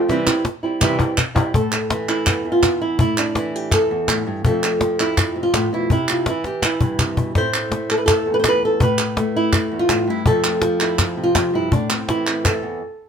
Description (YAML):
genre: flamenco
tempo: 165 BPM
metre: 4/4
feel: straight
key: A minor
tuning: A4 = 440 Hz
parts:
  - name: flamenco guitar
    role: melody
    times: 0.0-13.1 s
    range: E2 to C5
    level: -19 LUFS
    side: right 1 dB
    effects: none
  - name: cajon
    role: percussion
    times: 0.1-12.6 s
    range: none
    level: -20 LUFS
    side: left 2 dB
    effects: none
  - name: palmas hand claps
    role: percussion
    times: 0.3-12.6 s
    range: none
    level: -22 LUFS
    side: right 2 dB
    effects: none
room: light reverb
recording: minimal, uncompressed stereo recording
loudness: -16 LUFS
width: side -7 dB against mid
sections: 0.0-1.5 A section; 1.5-13.1 B section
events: drum fill 0.1-1.5, 6.4-7.4; stop 12.8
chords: 0.1 C; 1.5 Asus2; 4.4 F; 5.9 C; 7.4 Amadd9; 10.3 F; 11.7 Am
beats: | 0.09 0.45 0.82 1.18 | 1.54 1.91 2.27 2.63 | 2.99 3.36 3.72 4.08 | 4.45 4.81 5.17 5.54 | 5.90 6.26 6.63 6.99 | 7.35 7.72 8.08 8.45 | 8.81 9.17 9.54 9.90 | 10.26 10.63 10.99 11.36 | 11.72 12.09 12.45 12.81